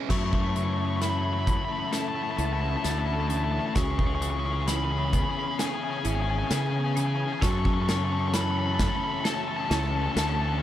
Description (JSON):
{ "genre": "post-rock", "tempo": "66 BPM", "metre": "4/4", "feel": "straight", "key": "F# minor", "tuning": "A4 = 440 Hz", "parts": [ { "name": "granular cloud pad", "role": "sustained chords", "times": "0.0-10.6 s", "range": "A3 to F#5", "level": "-42 LUFS", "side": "right 2 dB", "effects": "built-in reverb" }, { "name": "folk marimba with hard mallets", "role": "arpeggios", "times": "0.0-10.6 s", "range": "C#4 to F#4", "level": "-39 LUFS", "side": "right 6 dB", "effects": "tape echo" }, { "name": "twelve-string electric guitar", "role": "arpeggios", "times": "0.0-10.6 s", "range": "F#2 to A4", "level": "-35 LUFS", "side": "left 1 dB", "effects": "ensemble chorus, tape echo" }, { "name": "crunchy overdriven guitar", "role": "melody", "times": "0.1-10.6 s", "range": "G#5 to C#6", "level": "-32 LUFS", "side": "right 1 dB", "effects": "tape echo" }, { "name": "fuzz guitar", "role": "riff", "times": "0.1-10.6 s", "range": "A3 to A4", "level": "-32 LUFS", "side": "left 8 dB", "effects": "distortion" }, { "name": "fuzz fingered electric bass", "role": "bass", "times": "0.1-10.6 s", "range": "G#1 to C#3", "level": "-28 LUFS", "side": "equal", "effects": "overdrive" }, { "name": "big rock drum kit", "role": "drums", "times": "0.1-10.4 s", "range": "crash cymbal, hi-hat, kick drum, snare drum", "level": "-29 LUFS", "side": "equal", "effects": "none" } ], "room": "small room ambience", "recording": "dark, warm production", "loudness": "-24 LUFS", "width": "side -12 dB against mid", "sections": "0.1-10.6 A section", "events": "build-up 0.1-10.6; drum fill 0.1-10.6", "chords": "0.1 F#m7; 3.8 C#m7; 7.4 F#m7" }